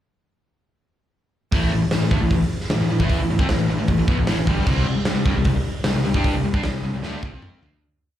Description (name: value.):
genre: hard rock.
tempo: 152 BPM.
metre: 4/4.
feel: straight.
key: A minor.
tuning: A4 = 444 Hz.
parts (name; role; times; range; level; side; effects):
distorted electric guitar; riff; 1.5-7.8 s; G2 to G4; -28 LUFS; right 8 dB; distortion, slapback echo.
sludgy distorted guitar; riff; 1.5-7.8 s; G2 to G4; -24 LUFS; left 6 dB; overdrive, slapback echo.
fuzz picked electric bass; bass; 1.5-7.8 s; G1 to G2; -25 LUFS; equal; overdrive.
big rock drum kit; drums; 1.5-7.7 s; crash cymbal, hi-hat, kick drum, snare drum, toms; -22 LUFS; right 1 dB; none.
room: small room ambience.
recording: live gig heard through the venue's PA, club reverb.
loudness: -18 LUFS.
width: side -12 dB against mid.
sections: 1.5-7.8 riff.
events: fade-out 6.2-7.8; drum fill 7.0-7.8.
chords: 1.5 A5; 4.7 C5.